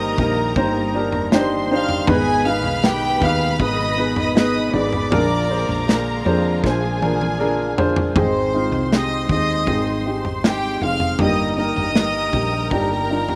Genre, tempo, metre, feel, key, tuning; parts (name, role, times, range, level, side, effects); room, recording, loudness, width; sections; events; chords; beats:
pop ballad; 79 BPM; 4/4; straight; A4 = 440 Hz
warm studio violin section; melody; 0.0-13.4 s; G4 to F6; -25 LUFS; equal; slapback echo
warm symphonic violin section; second line; 0.0-8.1 s; Ab4 to C6; -29 LUFS; equal; slapback echo
dark upright piano; accompaniment; 0.0-13.4 s; G2 to D5; -24 LUFS; equal
rich studio string section; sustained chords; 0.0-13.4 s; Cb3 to C6; -34 LUFS; equal
nylon-string guitar; arpeggios; 0.0-13.4 s; G2 to Ab4; -34 LUFS; equal
woody fretless electric bass; bass; 0.0-13.4 s; F1 to F2; -28 LUFS; equal
modern studio drum kit; drums; 0.2-13.4 s; kick drum, snare drum, toms; -24 LUFS; equal
little or no reverb; recorded outdoors, with no room sound; -19 LUFS; mono
0.0-8.2 A section; 8.2-13.4 B section
drum fill 6.6-8.2
0.0 Ebmaj7/G; 2.1 Abm; 5.1 Bb7; 8.2 Ab; 11.2 Ebmaj7/G
0.56 1.32 | 2.08 2.84 3.60 4.36 | 5.12 5.88 6.64 7.40 | 8.16 8.92 9.68 10.44 | 11.20 11.96 12.71